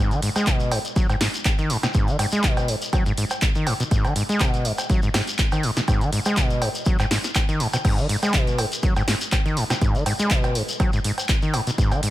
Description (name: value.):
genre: acid house.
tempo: 122 BPM.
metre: 4/4.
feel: swing 54% on 16ths.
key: G# minor.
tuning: A4 = 439 Hz.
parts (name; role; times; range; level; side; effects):
overdriven acid bass; riff; 0.0-12.1 s; G#2 to G#3; -24 LUFS; equal; cassette tape, sidechain pumping, dub echo.
punchy analog drum machine; drums; 0.1-12.1 s; cowbell, crash cymbal, handclaps, hi-hat, snare drum; -26 LUFS; right 1 dB; none.
shekere; percussion; 0.1-12.0 s; none; -33 LUFS; left 3 dB; none.
electronic kick drum; drums; 0.5-11.9 s; none; -22 LUFS; equal; none.
room: light reverb.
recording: none.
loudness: -19 LUFS.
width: side -15 dB against mid.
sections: 0.0-12.1 A section.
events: none.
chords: none.